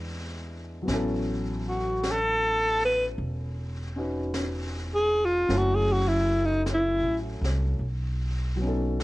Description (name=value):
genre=jazz ballad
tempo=52 BPM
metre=4/4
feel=swing 69% on 8ths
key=unclear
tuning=A4 = 445 Hz
part: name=warm baby grand piano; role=accompaniment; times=0.0-9.0 s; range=F#3 to B4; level=-32 LUFS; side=left 1 dB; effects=none
part: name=upright bass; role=bass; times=0.0-9.0 s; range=E1 to E2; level=-30 LUFS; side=equal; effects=none
part: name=jazz brush drum kit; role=drums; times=0.9-9.0 s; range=brushed snare drum, hi-hat, snare drum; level=-38 LUFS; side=left 1 dB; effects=cassette tape
part: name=breathy alto saxophone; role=melody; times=1.7-7.2 s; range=D#4 to B4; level=-24 LUFS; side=equal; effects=cassette tape
room=light reverb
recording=home recording on cassette, nothing above 10.6 kHz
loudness=-24 LUFS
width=side -18 dB against mid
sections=0.0-9.0 A section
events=alto saxophone solo 0.0-9.0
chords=0.0 E7; 0.9 A69; 5.5 F#m7; 7.8 B9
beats=| 0.88 2.02 3.17 4.32 | 5.48 6.64 7.80 8.97